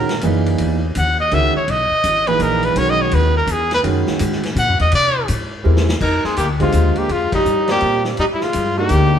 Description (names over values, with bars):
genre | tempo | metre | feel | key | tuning
modal jazz | 166 BPM | 3/4 | swing 64% on 8ths | F dorian from 6.0 s | A4 = 439 Hz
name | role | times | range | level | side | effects
clear trumpet | melody | 0.0-9.2 s | Eb4 to F#5 | -18 LUFS | equal | none
warm concert grand piano | accompaniment | 0.0-9.2 s | A#2 to Eb5 | -21 LUFS | right 4 dB | none
upright bass | bass | 0.0-9.2 s | G#1 to C3 | -19 LUFS | left 1 dB | none
vintage drum kit | drums | 0.1-9.0 s | crash cymbal, hi-hat, kick drum, ride cymbal, snare drum | -26 LUFS | left 1 dB | none
warm tenor saxophone | second line | 6.0-9.2 s | G3 to Eb4 | -21 LUFS | left 3 dB | none
room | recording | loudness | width
moderate stone room reverb, RT60 1.4 s | band playing live in one room | -14 LUFS | side -8 dB against mid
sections
0.0-6.0 A section; 6.0-9.2 B section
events
trumpet solo 0.0-6.0; drum fill 5.6-6.0; band accent 7.3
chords
0.0 C#m69; 1.7 Esus2; 4.9 C7b13; 6.0 Fm11